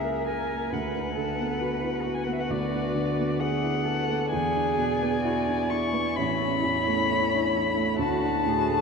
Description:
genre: classical, slow romantic movement for piano quartet.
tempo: 66 BPM.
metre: 4/4.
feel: rubato.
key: unclear.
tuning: A4 = 439 Hz.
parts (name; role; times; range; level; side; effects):
muted violin; melody; 0.0-8.8 s; D5 to C#6; -29 LUFS; left 5 dB; none.
muted cello; second line; 0.0-8.8 s; E4 to B4; -31 LUFS; right 3 dB; none.
muted violin; second line; 0.0-8.8 s; F#4 to D5; -33 LUFS; left 2 dB; none.
dark baby grand piano; accompaniment; 0.0-8.8 s; A1 to A#4; -28 LUFS; right 2 dB; none.
room: wet cathedral reverb, RT60 6.6 s.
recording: in a vast, echoing space.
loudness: -24 LUFS.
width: side -5 dB against mid.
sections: 0.0-8.8 A section.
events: none.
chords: 0.0 A#dim/C#; 0.7 Bm/D; 4.3 E7; 6.2 A; 8.0 D.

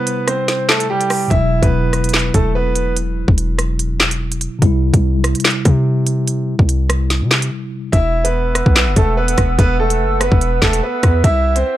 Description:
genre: hip hop, drill.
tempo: 145 BPM.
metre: 4/4.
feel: half-time.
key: E minor.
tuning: A4 = 440 Hz.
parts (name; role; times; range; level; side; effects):
clear concert grand piano; melody; 0.0-2.9, 7.9-11.8 s; G3 to E5; -18 LUFS; right 2 dB; ping-pong delay.
mellow tine electric piano; accompaniment; 0.0-8.0 s; B2 to E4; -22 LUFS; left 1 dB; medium stereo tremolo.
drill drum kit; drums; 0.1-11.6 s; handclaps, hi-hat, kick drum, rim click, snare drum; -15 LUFS; equal; none.
hard-hitting 808-style bass; bass; 1.3-11.6 s; E1 to C3; -17 LUFS; equal; none.
warbly tape-like pad; sustained chords; 7.9-11.8 s; G4 to E6; -24 LUFS; right 3 dB; chorus, built-in reverb.
room: digital ambience.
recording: none.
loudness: -13 LUFS.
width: side -14 dB against mid.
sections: 0.0-7.9 A section; 7.9-11.8 B section.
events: break 0.0-1.3, 7.5-7.9.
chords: 0.0 C; 1.3 Esus2; 4.6 C; 7.9 Esus2; 11.2 C.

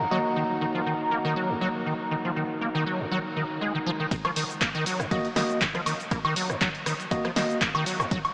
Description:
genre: acid house.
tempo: 120 BPM.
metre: 4/4.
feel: swing 54% on 16ths.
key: unclear.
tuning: A4 = 441 Hz.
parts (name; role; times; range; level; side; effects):
acid bass, square; riff; 0.0-8.2 s; Eb2 to Bb3; -28 LUFS; equal; ensemble chorus, analog delay.
tine electric piano; stabs; 0.0-7.6 s; Bb3 to Eb5; -32 LUFS; equal; fast stereo tremolo, low-pass filter, analog delay.
warbly tape-like pad; texture; 0.0-4.1 s; Eb4 to Bb5; -31 LUFS; equal; chorus, built-in reverb, sidechain pumping.
electronic kick drum; drums; 4.1-8.2 s; none; -31 LUFS; equal; none.
punchy analog drum machine; drums; 4.1-8.3 s; handclaps, hi-hat, ride cymbal, rim click, shaker, snare drum, woodblock; -27 LUFS; equal; low-pass filter on hats, low-pass filter on perc, low-pass filter on cymbals, low-pass filter on snare.
room: wet huge ambient reverb, RT60 8.2 s.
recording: dreamy mix soaked in reverb, small speaker sound.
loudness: -24 LUFS.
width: side -34 dB against mid.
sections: 0.0-4.1 A section; 4.1-8.3 B section.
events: filter sweep on tine electric piano 0.0-4.1; drop 4.1-8.3.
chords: 0.0 Ebm.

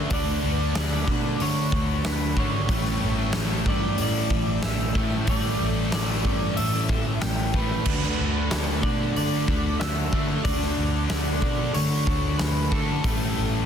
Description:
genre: rock, shoegaze and dream pop.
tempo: 93 BPM.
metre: 4/4.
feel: straight.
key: D major.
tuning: A4 = 440 Hz.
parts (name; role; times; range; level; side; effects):
electric guitar through a small old amp; melody; 0.0-13.7 s; A4 to G5; -31 LUFS; right 2 dB; wide subtle chorus, digital delay.
phased string machine; sustained chords; 0.0-13.7 s; G4 to B5; -38 LUFS; equal; ensemble chorus, phaser.
cranked stack guitar; riff; 0.0-13.7 s; A2 to D4; -31 LUFS; left 1 dB; overdrive.
raw garage guitar; riff; 0.0-13.7 s; A2 to G4; -33 LUFS; right 9 dB; overdrive, reverse reverb.
thick fuzz guitar; riff; 0.0-13.7 s; A2 to D4; -31 LUFS; left 10 dB; distortion, analog chorus.
vintage muted picked electric bass; bass; 0.0-13.7 s; G#1 to D3; -28 LUFS; equal; none.
huge arena drum kit; drums; 0.1-13.2 s; crash cymbal, hi-hat, kick drum, snare drum; -27 LUFS; equal; none.
tambourine; percussion; 0.8-12.6 s; none; -44 LUFS; right 12 dB; none.
room: small room ambience.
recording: dense, heavily limited modern master.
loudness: -22 LUFS.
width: side -8 dB against mid.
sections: 0.0-13.7 A section.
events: none.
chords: 0.0 D6; 2.7 A7sus4; 7.9 D6; 13.0 A7(no3).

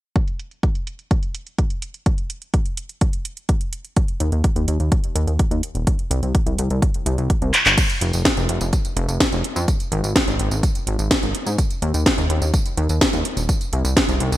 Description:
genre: italo disco.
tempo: 126 BPM.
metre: 4/4.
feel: straight.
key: unclear.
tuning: A4 = 440 Hz.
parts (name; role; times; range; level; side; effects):
electronic kick drum; drums; 0.2-14.1 s; none; -20 LUFS; equal; none.
house drum kit; drums; 0.2-14.4 s; crash cymbal, handclaps, hi-hat, snare drum, tambourine; -21 LUFS; equal; low-pass filter on hats, low-pass filter on snare, low-pass filter on cymbals, low-pass filter on perc, gated reverb.
chorused synth bass; bass; 4.2-14.4 s; Eb1 to Ab2; -21 LUFS; equal; tube saturation.
room: little or no reverb.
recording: bright 1980s-style digital production.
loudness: -18 LUFS.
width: side -14 dB against mid.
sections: 0.2-7.8 A section; 7.8-14.4 B section.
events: drum fill 7.5.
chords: none.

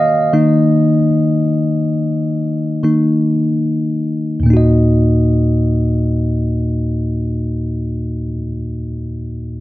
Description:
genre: pop.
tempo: 52-64 BPM.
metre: 4/4.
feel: straight.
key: Eb minor.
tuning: A4 = 438 Hz.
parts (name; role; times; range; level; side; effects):
bell-like tine electric piano; accompaniment; 0.0-9.6 s; Eb2 to F5; -14 LUFS; equal; none.
room: light reverb.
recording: none.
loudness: -13 LUFS.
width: side -16 dB against mid.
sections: 0.0-4.5 A section; 4.5-9.1 B section.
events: slowing down 0.0-4.5; tine electric piano solo 0.0-4.5.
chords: 0.3 Eb5; 4.5 Ebm.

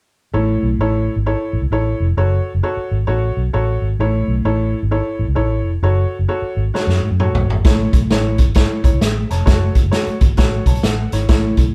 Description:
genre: uptempo 1960s-style soul.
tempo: 132 BPM.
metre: 4/4.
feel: swing 63% on 8ths.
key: A major.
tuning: A4 = 439 Hz.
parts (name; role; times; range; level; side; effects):
clear upright piano; accompaniment; 0.3-11.7 s; A2 to A5; -23 LUFS; equal; none.
vintage muted fingered electric bass; bass; 0.3-11.7 s; F1 to G#2; -20 LUFS; equal; none.
vintage drum kit; drums; 6.7-11.7 s; hi-hat, kick drum, snare drum, toms; -17 LUFS; equal; none.
room: moderate studio reverb, RT60 0.8 s.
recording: band playing live in one room.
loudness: -17 LUFS.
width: mono.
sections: 0.3-11.7 A section.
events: drum fill 6.7-7.6.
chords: 0.3 A; 2.2 F#m; 4.0 A; 5.8 F#m; 7.6 A; 9.5 F#m.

